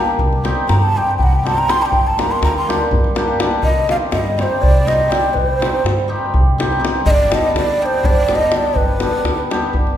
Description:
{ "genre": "balkan folk, Balkan wedding band", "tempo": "245 BPM (eighths)", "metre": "7/8", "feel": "straight", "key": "G minor, C harmonic minor from 3.6 s", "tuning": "A4 = 440 Hz", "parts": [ { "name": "breathy mellow ney", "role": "melody", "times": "0.0-9.5 s", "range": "B4 to C6", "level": "-18 LUFS", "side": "right 1 dB", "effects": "none" }, { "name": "hammered dulcimer", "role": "accompaniment", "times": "0.0-10.0 s", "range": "G3 to G4", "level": "-20 LUFS", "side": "left 1 dB", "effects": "none" }, { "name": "upright bass", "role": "bass", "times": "0.2-10.0 s", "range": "G1 to G2", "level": "-21 LUFS", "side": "equal", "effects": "none" }, { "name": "davul", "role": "percussion", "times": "0.2-9.9 s", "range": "none", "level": "-19 LUFS", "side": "equal", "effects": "none" } ], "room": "wet recital hall reverb, RT60 1.8 s", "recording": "recorded in a church or concert hall", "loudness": "-13 LUFS", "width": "side -10 dB against mid", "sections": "0.0-3.6 A section; 3.6-10.0 B section", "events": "ney solo 0.0-3.6", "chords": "0.2 Cm; 1.9 Gm; 3.6 Cm; 7.0 G" }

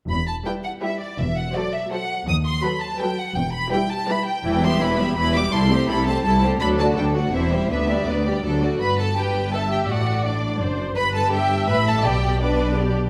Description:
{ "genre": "quick classical-period movement for string orchestra", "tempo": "166 BPM", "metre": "3/4", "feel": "straight", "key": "E minor, G major from 4.4 s", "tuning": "A4 = 440 Hz", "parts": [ { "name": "rich studio violin section", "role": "melody", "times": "0.1-12.9 s", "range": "C5 to D#6", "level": "-28 LUFS", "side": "equal", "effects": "none" }, { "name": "rich symphonic cello section", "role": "bass", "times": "0.1-13.1 s", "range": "C2 to B2", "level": "-28 LUFS", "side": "equal", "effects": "none" }, { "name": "rich symphonic double bass section", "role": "bass", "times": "0.1-13.1 s", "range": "E1 to D#2", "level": "-28 LUFS", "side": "equal", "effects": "none" }, { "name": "clear studio violin section", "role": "second line", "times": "0.5-12.9 s", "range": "D4 to E5", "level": "-29 LUFS", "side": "equal", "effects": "none" }, { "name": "clear symphonic viola section", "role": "accompaniment", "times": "0.5-13.1 s", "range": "E3 to E5", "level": "-27 LUFS", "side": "equal", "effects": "none" } ], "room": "moderate scoring stage reverb, RT60 1.7 s", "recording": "none", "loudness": "-22 LUFS", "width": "mono", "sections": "0.1-8.8 A section; 8.8-13.1 B section", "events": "none", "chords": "0.1 Em; 1.2 F#m7b5/E; 2.3 B7/D#; 3.4 Em; 5.5 Am7/C; 6.6 D; 7.3 C/E; 7.7 G/D; 8.4 D; 8.8 G; 9.9 D7/A; 11.0 G; 12.0 G/B" }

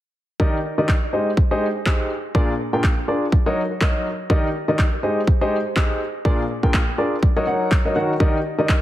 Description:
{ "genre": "piano house", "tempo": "123 BPM", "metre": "4/4", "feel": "swing 57% on 16ths", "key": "unclear", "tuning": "A4 = 439 Hz", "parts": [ { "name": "warm upright piano", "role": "riff", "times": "0.4-8.7 s", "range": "Bb2 to G5", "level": "-21 LUFS", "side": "equal", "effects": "sidechain pumping, low-pass filter, tape echo" }, { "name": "electronic kick drum", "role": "drums", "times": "0.4-8.8 s", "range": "none", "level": "-18 LUFS", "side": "equal", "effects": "none" }, { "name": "electronic handclaps", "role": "drums", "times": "0.9-8.8 s", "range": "none", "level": "-26 LUFS", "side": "equal", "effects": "none" } ], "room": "light reverb", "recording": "heavily compressed radio sound, multiband compression", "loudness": "-18 LUFS", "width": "side -14 dB against mid", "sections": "0.4-8.8 A section", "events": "none", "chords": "0.4 Ebmaj7; 1.1 Abmaj7; 2.1 Bb7; 3.3 Gb6; 4.3 Ebmaj7; 5.0 Abmaj7; 6.0 Bb7; 7.2 Gb6; 8.2 Ebmaj7" }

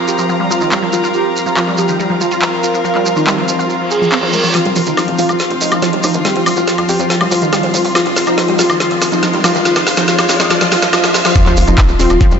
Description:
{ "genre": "psychedelic trance", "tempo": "141 BPM", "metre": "4/4", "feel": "straight", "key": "unclear", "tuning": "A4 = 440 Hz", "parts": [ { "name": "evolving wavetable pad", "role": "sustained chords", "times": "0.0-12.4 s", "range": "F3 to Bb4", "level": "-20 LUFS", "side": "left 1 dB", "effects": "phaser, built-in reverb, sidechain pumping" }, { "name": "warm chamber string section", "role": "texture", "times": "0.0-12.4 s", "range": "C4 to C6", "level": "-20 LUFS", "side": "left 2 dB", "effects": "sidechain pumping" }, { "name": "wide unison lead", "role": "melody", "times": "0.1-12.2 s", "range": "Eb4 to Bb4", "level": "-18 LUFS", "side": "equal", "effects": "phaser, vintage 12-bit sampler grit, sidechain pumping, ping-pong delay" }, { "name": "shekere", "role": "percussion", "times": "0.1-12.4 s", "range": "none", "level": "-24 LUFS", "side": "right 4 dB", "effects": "none" }, { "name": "wide unison pluck", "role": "riff", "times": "0.2-12.4 s", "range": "Eb3 to F4", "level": "-19 LUFS", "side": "moving between left 2 dB and right 4 dB", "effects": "auto-pan, sidechain pumping, ping-pong delay" }, { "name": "garage drum kit", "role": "drums", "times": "0.7-12.4 s", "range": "handclaps, hi-hat, snare drum, woodblock", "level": "-17 LUFS", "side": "equal", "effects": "none" }, { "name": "reverse cymbal, riser and sub drop", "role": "sound effects", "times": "3.8-12.4 s", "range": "none", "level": "-22 LUFS", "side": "equal", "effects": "none" }, { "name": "tight sequencer bass", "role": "bass", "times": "4.7-12.4 s", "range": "Eb1 to F2", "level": "-21 LUFS", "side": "equal", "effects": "high-pass filter" }, { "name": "formant-sweep wobble bass", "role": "second line", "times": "5.6-10.4 s", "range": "C4 to F4", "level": "-30 LUFS", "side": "equal", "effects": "none" }, { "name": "electronic kick drum", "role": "drums", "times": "11.4-12.3 s", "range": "none", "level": "-11 LUFS", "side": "equal", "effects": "none" } ], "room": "wet lush hall reverb, RT60 1.8 s, digital ambience", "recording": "dreamy mix soaked in reverb, nothing above 7.9 kHz", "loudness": "-11 LUFS", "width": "side -7 dB against mid", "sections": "0.0-4.5 A section; 4.5-11.4 B section; 11.4-12.4 C section", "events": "filter sweep on synth arpeggio sound 0.0-4.5, 4.5-11.4; reverse cymbal 3.8-4.5; build-up 4.5-11.4; drum fill 4.5-11.4; riser 4.5-11.4; drop 11.4-12.4; impact 11.4-12.4", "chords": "0.0 F5" }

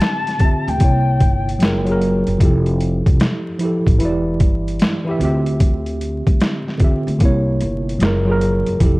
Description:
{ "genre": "lo-fi hip hop", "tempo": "75 BPM", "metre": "4/4", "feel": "swing 66% on 16ths", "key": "unclear", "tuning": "A4 = 440 Hz", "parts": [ { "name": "mellow concert flute", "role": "melody", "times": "0.0-1.9 s", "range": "G5 to A5", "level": "-23 LUFS", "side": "left 4 dB", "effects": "low-pass filter, analog delay" }, { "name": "tine electric piano", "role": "accompaniment", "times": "0.0-9.0 s", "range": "C3 to F5", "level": "-19 LUFS", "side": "right 1 dB", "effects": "medium stereo tremolo, low-pass filter" }, { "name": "boom bap sampler-style drum kit", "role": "drums", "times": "0.0-9.0 s", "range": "hi-hat, kick drum, snare drum", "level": "-16 LUFS", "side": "equal", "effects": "overdrive" }, { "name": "upright bass", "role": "bass", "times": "0.7-9.0 s", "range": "E1 to D2", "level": "-20 LUFS", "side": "equal", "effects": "transformer saturation" } ], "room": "light reverb, studio reverb", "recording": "worn, warbling old tape, cassette tape, vinyl crackle, warbly pitch drift", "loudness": "-14 LUFS", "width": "side -21 dB against mid", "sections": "0.0-9.0 A section", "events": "none", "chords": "0.0 Dm11; 0.8 C7b9; 1.6 F#maj9; 2.4 Fmaj9; 4.0 Em7; 5.2 Dm11; 7.2 C7b9; 8.0 F#maj9" }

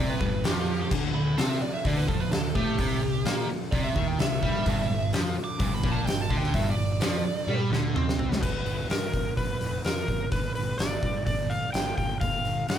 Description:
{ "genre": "blues rock power trio and southern rock", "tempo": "128 BPM", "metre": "4/4", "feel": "straight", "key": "G mixolydian", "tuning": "A4 = 443 Hz", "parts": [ { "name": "bluesy overdriven lead guitar", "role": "second line", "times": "0.0-7.6 s", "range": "G4 to D6", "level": "-32 LUFS", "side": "right 4 dB", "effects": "distortion" }, { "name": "fuzz guitar", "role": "riff", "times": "0.0-8.4 s", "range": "G2 to C4", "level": "-29 LUFS", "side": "equal", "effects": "distortion" }, { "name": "fuzz fingered electric bass", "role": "bass", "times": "0.0-12.8 s", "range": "F1 to C3", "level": "-33 LUFS", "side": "equal", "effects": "overdrive" }, { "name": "oversized low-tuned drum kit", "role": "drums", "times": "0.2-12.8 s", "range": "crash cymbal, hi-hat, kick drum, snare drum, toms", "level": "-28 LUFS", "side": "equal", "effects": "none" }, { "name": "overdriven slide guitar", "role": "melody", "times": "8.4-12.8 s", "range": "Bb4 to G5", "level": "-31 LUFS", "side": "equal", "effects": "digital delay" } ], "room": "moderate large studio reverb, RT60 1.1 s", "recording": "band playing live in one room", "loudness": "-24 LUFS", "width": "side -9 dB against mid", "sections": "0.0-8.4 A section; 8.4-12.8 B section", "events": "lead electric guitar solo 0.0-8.4; drum fill 7.5-8.4", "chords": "0.0 G5; 0.9 D5; 2.8 C7; 4.7 G5; 7.5 D7sus4; 8.4 G" }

